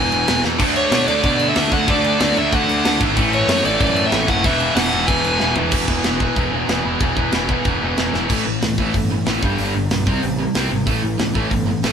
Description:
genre	punk rock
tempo	187 BPM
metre	4/4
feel	straight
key	unclear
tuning	A4 = 439 Hz
part	biting overdriven guitar	melody	0.0-5.5 s	C#5 to G#5	-20 LUFS	equal	none
part	distorted electric guitar	riff	0.0-11.9 s	E2 to D4	-22 LUFS	right 4 dB	distortion
part	sludgy distorted guitar	riff	0.0-11.9 s	G2 to G#4	-24 LUFS	left 6 dB	overdrive
part	fuzz picked electric bass	bass	0.0-11.9 s	E1 to B2	-24 LUFS	equal	overdrive
part	tight metal drum kit	drums	0.1-11.9 s	crash cymbal, hi-hat, kick drum, snare drum, toms	-22 LUFS	equal	none
part	heavy high-gain guitar	riff	0.6-5.7 s	E2 to D4	-22 LUFS	equal	distortion
room	moderate stone room reverb, RT60 0.9 s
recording	band playing live in one room, lossy compression artefacts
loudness	-15 LUFS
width	side -7 dB against mid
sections	0.0-5.7 A section; 5.7-8.3 B section; 8.3-11.9 C section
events	drum fill 0.4, 5.4-5.7, 8.1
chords	0.0 E; 0.6 D; 3.2 A; 4.4 E; 8.3 A5; 9.4 G; 10.1 C5; 10.9 A5

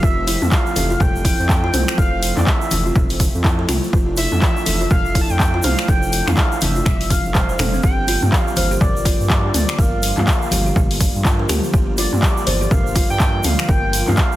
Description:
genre	afro house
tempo	123 BPM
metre	4/4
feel	swing 60% on 16ths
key	unclear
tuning	A4 = 440 Hz
part	expressive synth lead	melody	0.0-14.4 s	D5 to A5	-24 LUFS	right 1 dB	wide subtle chorus, cassette tape, tape echo
part	warm analog pad	sustained chords	0.0-14.4 s	D3 to F4	-29 LUFS	right 1 dB	chorus, sidechain pumping
part	buzzing kalimba	arpeggios	0.0-14.2 s	C4 to D5	-26 LUFS	equal	sidechain pumping, tape echo
part	dark detuned saw bass	bass	0.0-14.2 s	F1 to G2	-21 LUFS	equal	sidechain pumping
part	electronic kick drum	drums	0.0-14.3 s	none	-17 LUFS	equal	none
part	tube shaker	percussion	0.0-14.4 s	none	-31 LUFS	right 2 dB	none
part	deep house drum kit	drums	0.3-14.3 s	finger snaps, handclaps, hi-hat, toms	-22 LUFS	left 1 dB	none
part	congas	percussion	0.8-14.2 s	none	-26 LUFS	left 1 dB	none
room	digital ambience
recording	dense, heavily limited modern master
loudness	-15 LUFS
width	side -15 dB against mid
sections	0.0-14.4 A section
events	none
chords	0.0 Fmaj7; 7.8 Gm7

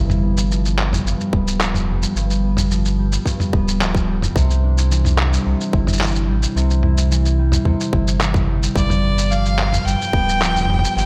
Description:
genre	folktronica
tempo	109 BPM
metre	4/4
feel	straight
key	C major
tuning	A4 = 438 Hz
part	concert harp	arpeggios	0.0-11.1 s	G2 to E4	-24 LUFS	equal	low-pass filter, tape echo
part	warm sub bass	bass	0.0-11.1 s	D1 to E2	-21 LUFS	equal	tube saturation
part	lo-fi sampler-style drum kit	drums	0.1-11.1 s	handclaps, shaker, toms	-25 LUFS	equal	small room ambience
part	electronic kick drum	drums	1.3-10.2 s	none	-23 LUFS	equal	small room ambience
part	clear violin	melody	8.8-11.1 s	D5 to G5	-23 LUFS	equal	tape echo
room	light reverb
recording	none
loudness	-18 LUFS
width	mono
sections	0.0-11.1 A section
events	filter sweep on harp 0.0-11.1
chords	0.0 G7; 4.4 C; 8.8 G7

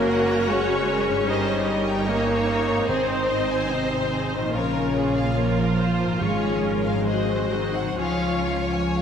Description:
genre	classical, slow romantic movement for symphony orchestra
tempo	61-77 BPM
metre	4/4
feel	rubato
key	Db major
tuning	A4 = 440 Hz
part	clear symphonic violin section	melody	0.0-9.0 s	Ab4 to Db5	-30 LUFS	left 3 dB	none
part	clear chamber violin section	second line	0.0-9.0 s	F4 to Bb5	-30 LUFS	left 3 dB	none
part	rich chamber viola section	accompaniment	0.0-9.0 s	Ab3 to Gb4	-28 LUFS	right 1 dB	none
part	dark French horn section	sustained chords	0.0-9.0 s	C4 to C5	-28 LUFS	left 2 dB	none
part	concert harp	arpeggios	0.0-9.0 s	Gb2 to Db5	-32 LUFS	left 7 dB	none
part	rich chamber cello section	bass	0.0-9.0 s	C3 to C4	-27 LUFS	right 2 dB	none
part	rich chamber double bass section	bass	0.0-9.0 s	Gb1 to Db2	-30 LUFS	right 3 dB	none
part	timpani	percussion	2.9-7.0 s	Ab2	-36 LUFS	right 1 dB	none
room	wet concert hall reverb, RT60 2.5 s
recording	none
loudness	-20 LUFS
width	side -8 dB against mid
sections	0.0-9.0 A section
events	none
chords	0.0 Gb; 1.3 Eb7/G; 2.9 Ab; 4.5 Bbm; 6.2 Db/Ab; 7.1 Ab7; 8.0 Db

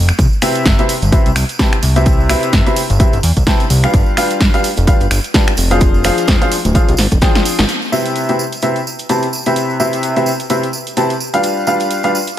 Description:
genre	piano house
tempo	128 BPM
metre	4/4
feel	swing 57% on 16ths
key	C major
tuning	A4 = 440 Hz
part	fat analog bass	bass	0.0-7.7 s	D1 to G2	-14 LUFS	equal	sidechain pumping
part	punchy analog drum machine	drums	0.1-12.4 s	finger snaps, hi-hat, snare drum	-19 LUFS	equal	overdrive
part	tambourine	percussion	0.1-12.4 s	none	-26 LUFS	right 3 dB	none
part	electronic kick drum	drums	0.2-7.3 s	none	-13 LUFS	equal	overdrive
part	clear upright piano	riff	0.4-12.2 s	C3 to A5	-16 LUFS	left 1 dB	sidechain pumping, low-pass filter, ping-pong delay
room	light reverb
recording	none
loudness	-11 LUFS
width	side -12 dB against mid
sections	0.0-7.7 A section; 7.7-12.4 B section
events	drum fill 7.0-7.7; band accent 7.6; filter sweep on upright piano 7.7-12.4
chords	0.2 Cmaj7; 3.9 G7; 5.8 Fm6; 7.7 Cmaj7; 11.4 G7

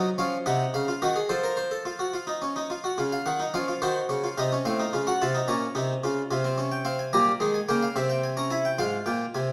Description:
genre	classical, baroque-style 3-part fugue for harpsichord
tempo	72 BPM (dotted quarters)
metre	6/8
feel	straight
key	unclear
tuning	A4 = 441 Hz
part	harpsichord	solo	0.0-9.5 s	Ab2 to Bb5	-27 LUFS	equal	none
room	wet recital hall reverb, RT60 1.2 s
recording	none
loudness	-27 LUFS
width	mono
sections	0.0-3.0 A section; 3.0-9.5 B section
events	none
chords	0.5 Cdim; 1.3 F; 3.0 Dbadd9; 3.8 Cdim; 4.7 F/A; 5.5 Bbm; 6.3 Fm/C; 7.1 Gm7b5/Bb; 8.0 C; 8.8 Fm/Ab

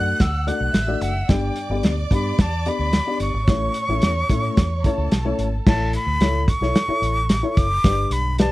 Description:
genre	uptempo 1960s-style soul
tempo	110 BPM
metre	4/4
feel	straight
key	unclear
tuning	A4 = 444 Hz
part	breathy silver concert flute	melody	0.0-8.5 s	F#5 to F#6	-25 LUFS	equal	none
part	warm studio violin section	second line	0.0-5.6 s	A4 to F#6	-32 LUFS	right 2 dB	slapback echo
part	dark upright piano	accompaniment	0.0-8.5 s	G2 to D5	-26 LUFS	left 4 dB	none
part	vintage muted fingered electric bass	bass	0.0-8.5 s	F#1 to A2	-24 LUFS	equal	none
part	warm soul drum kit	drums	0.2-8.5 s	crash cymbal, hi-hat, kick drum, snare drum	-19 LUFS	equal	none
room	little or no reverb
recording	dark, warm production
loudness	-18 LUFS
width	side -18 dB against mid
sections	0.0-5.7 A section; 5.7-8.5 B section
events	none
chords	0.0 D; 1.3 G; 3.5 A; 7.8 G

